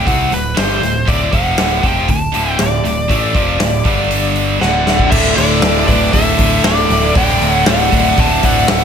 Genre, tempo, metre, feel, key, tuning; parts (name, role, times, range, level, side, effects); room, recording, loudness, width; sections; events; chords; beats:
hard rock; 118 BPM; 4/4; straight; A4 = 442 Hz
nasal lead guitar with a parked wah; melody; 0.0-8.8 s; B4 to A5; -18 LUFS; equal; overdrive
overdriven electric guitar; riff; 0.0-8.8 s; D2 to C4; -20 LUFS; left 13 dB
scooped high-gain guitar; riff; 0.0-8.8 s; D2 to C4; -19 LUFS; right 12 dB; distortion
picked electric bass; bass; 0.0-8.8 s; D1 to C2; -19 LUFS; equal
huge arena drum kit; drums; 0.1-8.8 s; crash cymbal, hi-hat, kick drum, snare drum; -16 LUFS; left 1 dB
high-gain lead guitar; second line; 4.6-8.8 s; A4 to F#5; -23 LUFS; right 6 dB; distortion
heavy high-gain guitar; riff; 5.1-8.8 s; D2 to D3; -21 LUFS; equal; distortion
light reverb; -11 LUFS; side -7 dB against mid
0.0-5.1 A section; 5.1-8.8 B section
drum fill 4.6-5.1
0.0 D; 3.9 G5; 4.6 D
0.06 0.57 | 1.07 1.58 2.08 2.59 | 3.09 3.60 4.11 4.61 | 5.12 5.63 6.14 6.65 | 7.16 7.67 8.18 8.69